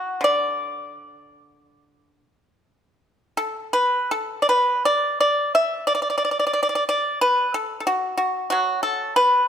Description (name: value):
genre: chinese traditional, Chinese solo plucked strings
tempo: 77-92 BPM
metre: 4/4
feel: rubato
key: D gong mode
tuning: A4 = 439 Hz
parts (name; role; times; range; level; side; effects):
- pipa; solo; 0.0-9.5 s; D3 to E5; -19 LUFS; equal; none
room: light reverb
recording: none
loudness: -19 LUFS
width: side -8 dB against mid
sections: 0.0-4.5 A section; 4.5-9.5 B section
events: none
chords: none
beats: 0.23 0.90 | 1.58 2.27 2.98 3.74 | 4.49 5.20 5.89 6.56 | 7.24 7.89 8.54 9.19